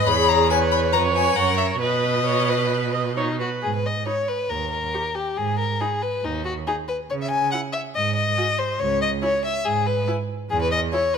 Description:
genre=quick classical-period movement for string quartet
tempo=139 BPM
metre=4/4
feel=rubato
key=B major, G# minor from 3.6 s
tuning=A4 = 440 Hz
part: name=rich violin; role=melody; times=0.0-11.0 s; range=D#5 to C#6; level=-23 LUFS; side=left 10 dB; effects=none
part: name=rich violin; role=second line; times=0.0-11.2 s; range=D#4 to G#5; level=-24 LUFS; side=left 4 dB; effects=none
part: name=rich viola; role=accompaniment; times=0.0-11.0 s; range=D#4 to D#5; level=-26 LUFS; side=right 4 dB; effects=none
part: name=clear cello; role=bass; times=0.0-10.9 s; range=C#2 to C#3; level=-26 LUFS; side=right 6 dB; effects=none
room=light reverb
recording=close, detailed microphones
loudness=-20 LUFS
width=side -6 dB against mid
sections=0.0-3.6 A section; 3.6-11.2 B section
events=none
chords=0.1 C#m7/E; 0.9 C#7/E#; 1.4 F#; 1.8 B; 3.6 G#m; 4.5 D#; 5.4 G#m; 7.1 C#5; 8.0 G#5; 8.8 C#m; 10.5 E

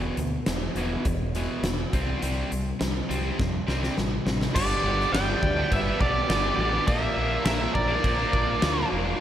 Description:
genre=classic rock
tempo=103 BPM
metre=4/4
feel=straight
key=unclear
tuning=A4 = 439 Hz
part: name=cranked stack guitar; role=riff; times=0.0-9.2 s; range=E2 to D4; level=-29 LUFS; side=equal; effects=overdrive, slapback echo
part: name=growling fingered electric bass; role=bass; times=0.0-9.1 s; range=E1 to F2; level=-30 LUFS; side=equal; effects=overdrive
part: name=huge arena drum kit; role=drums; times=0.2-8.8 s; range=crash cymbal, hi-hat, kick drum, snare drum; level=-28 LUFS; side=equal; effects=none
part: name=nasal lead guitar with a parked wah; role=second line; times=4.5-8.9 s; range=G4 to D5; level=-33 LUFS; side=right 1 dB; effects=overdrive, tape echo
part: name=octave-fuzz lead guitar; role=melody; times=4.6-8.9 s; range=D5 to G5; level=-27 LUFS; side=right 2 dB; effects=distortion
part: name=string machine, cellos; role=sustained chords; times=4.6-9.2 s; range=F4 to D5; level=-38 LUFS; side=equal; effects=none
room=moderate concert hall reverb, RT60 2.3 s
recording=big arena sound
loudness=-23 LUFS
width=side -11 dB against mid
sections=0.0-4.6 A section; 4.6-9.2 B section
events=drum fill 3.4-4.6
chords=0.0 E5; 1.9 C5; 4.6 G; 6.9 Bb

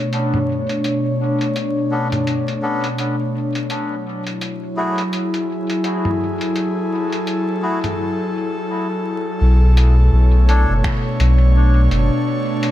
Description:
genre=ambient dub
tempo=84 BPM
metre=4/4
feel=swing 59% on 16ths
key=unclear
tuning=A4 = 440 Hz
part: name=airy breathy pad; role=sustained chords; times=0.0-12.7 s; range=B2 to C#5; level=-20 LUFS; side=equal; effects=chorus
part: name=lo-fi sampler-style drum kit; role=drums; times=0.1-12.7 s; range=finger snaps, hi-hat, toms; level=-28 LUFS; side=equal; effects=dub echo
part: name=melodica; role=stabs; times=1.9-10.7 s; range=A3 to C#5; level=-27 LUFS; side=left 2 dB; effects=dub echo
part: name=warm sub bass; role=bass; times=9.4-12.1 s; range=F#1 to B1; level=-12 LUFS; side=equal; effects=tube saturation
part: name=electronic kick drum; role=drums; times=10.8-11.0 s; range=none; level=-22 LUFS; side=equal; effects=overdrive
room=light reverb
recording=vinyl crackle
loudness=-16 LUFS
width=side -13 dB against mid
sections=0.0-9.4 A section; 9.4-12.7 B section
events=filter sweep on analog synth pad 0.0-9.4; break 8.0-9.4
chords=0.0 Bm9; 3.7 F#m9; 9.4 Bm9

